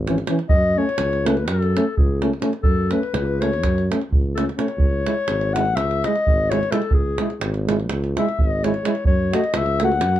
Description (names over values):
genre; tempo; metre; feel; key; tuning
balkan folk, Balkan brass band; 253 BPM (eighths); 9/8; straight; C# minor; A4 = 441 Hz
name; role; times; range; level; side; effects
mellow tuba; bass; 0.0-10.2 s; G#1 to F#2; -23 LUFS; equal; none
mellow trombone; accompaniment; 0.1-9.9 s; C#4 to F#4; -26 LUFS; left 5 dB; none
warm euphonium; accompaniment; 0.1-9.9 s; E3 to A3; -24 LUFS; right 5 dB; none
davul; percussion; 0.1-10.2 s; none; -22 LUFS; right 2 dB; none
dark clarinet; second line; 0.5-10.2 s; G#4 to F#5; -23 LUFS; left 4 dB; none
room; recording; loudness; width
moderate small room reverb, RT60 0.5 s; dark, warm production; -18 LUFS; side -12 dB against mid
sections
0.0-10.2 A section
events
clarinet solo 0.0-10.2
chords
0.0 C#m; 0.5 F#m; 4.8 C#m; 9.1 F#m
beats
0.03 0.26 | 0.50 0.74 0.98 1.22 1.46 1.69 1.93 2.17 2.41 | 2.65 2.88 3.12 3.36 3.60 3.83 4.07 4.31 4.55 | 4.79 5.02 5.26 5.50 5.74 5.97 6.21 6.45 6.68 | 6.92 7.16 7.40 7.63 7.87 8.11 8.34 8.58 8.82 | 9.06 9.29 9.53 9.77 10.00